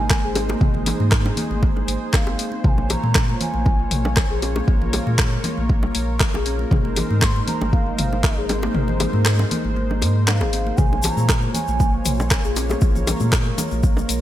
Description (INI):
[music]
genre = afro house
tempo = 118 BPM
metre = 4/4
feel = swing 54% on 16ths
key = Bb minor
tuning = A4 = 437 Hz
[part]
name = mellow bansuri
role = melody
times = 0.0-12.5 s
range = F5 to Db6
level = -29 LUFS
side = right 2 dB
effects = digital delay
[part]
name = warm analog pad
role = sustained chords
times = 0.0-14.2 s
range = Ab3 to Db5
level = -30 LUFS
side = right 2 dB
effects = chorus, sidechain pumping
[part]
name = warm sub bass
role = bass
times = 0.0-14.2 s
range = Ab1 to Bb2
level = -23 LUFS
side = equal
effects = sidechain pumping
[part]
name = kalimba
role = arpeggios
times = 0.1-14.1 s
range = F3 to Ab4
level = -27 LUFS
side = left 1 dB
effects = sidechain pumping, digital delay
[part]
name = deep house drum kit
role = drums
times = 0.1-14.2 s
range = handclaps, hi-hat, rim click, toms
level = -25 LUFS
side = left 1 dB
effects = overdrive
[part]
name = electronic kick drum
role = drums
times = 0.1-13.9 s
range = none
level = -19 LUFS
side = equal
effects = overdrive
[part]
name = congas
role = percussion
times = 0.1-14.2 s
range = none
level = -31 LUFS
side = left 2 dB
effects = none
[part]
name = bongos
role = percussion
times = 0.4-14.1 s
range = none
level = -31 LUFS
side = equal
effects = none
[part]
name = tube shaker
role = percussion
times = 10.8-14.2 s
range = none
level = -33 LUFS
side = left 6 dB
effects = none
[sound]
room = light reverb, studio ambience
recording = bright 1980s-style digital production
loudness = -17 LUFS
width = side -13 dB against mid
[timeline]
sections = 0.0-14.2 A section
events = kick drops out 8.7-10.8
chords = 0.0 Abadd9; 2.6 Bbm7; 6.7 Ab69; 10.8 Bbm7